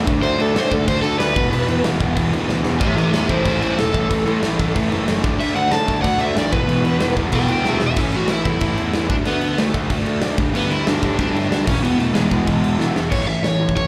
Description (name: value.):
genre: punk rock.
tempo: 186 BPM.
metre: 4/4.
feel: straight.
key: unclear.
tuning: A4 = 440 Hz.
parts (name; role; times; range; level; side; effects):
crunchy overdriven guitar; riff; 0.0-13.9 s; E2 to D4; -28 LUFS; equal; none.
fuzz guitar; riff; 0.0-13.1 s; E2 to D4; -32 LUFS; equal; none.
overdriven semi-hollow guitar; riff; 0.0-8.0, 10.5-13.9 s; E2 to D4; -26 LUFS; equal; slapback echo.
fuzz picked electric bass; bass; 0.0-13.9 s; E1 to A2; -26 LUFS; equal; overdrive.
big rock drum kit; drums; 0.1-13.8 s; crash cymbal, kick drum, snare drum; -25 LUFS; equal; none.
overdriven semi-hollow guitar; melody; 0.2-13.9 s; G#3 to A5; -24 LUFS; equal; slapback echo.
room: small room ambience.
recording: live gig heard through the venue's PA, club reverb.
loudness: -19 LUFS.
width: mono.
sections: 0.0-8.0 A section; 8.0-13.1 B section.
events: overdriven electric guitar solo 0.0-8.0; drum fill 2.5-2.8, 7.6-8.0, 12.8-13.1.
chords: 0.1 D5; 1.4 E5; 2.8 A5; 5.2 D5; 6.5 E5; 8.0 A5; 9.1 D5; 10.4 G5/D; 11.7 E; 13.1 A.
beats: | 0.23 0.56 0.88 1.20 | 1.52 1.85 2.17 2.49 | 2.81 3.14 3.46 3.78 | 4.10 4.43 4.75 5.07 | 5.39 5.71 6.04 6.36 | 6.68 7.00 7.33 7.65 | 7.97 8.29 8.61 8.93 | 9.26 9.58 9.90 10.22 | 10.54 10.86 11.19 11.51 | 11.83 12.15 12.47 12.80 | 13.12 13.44 13.77.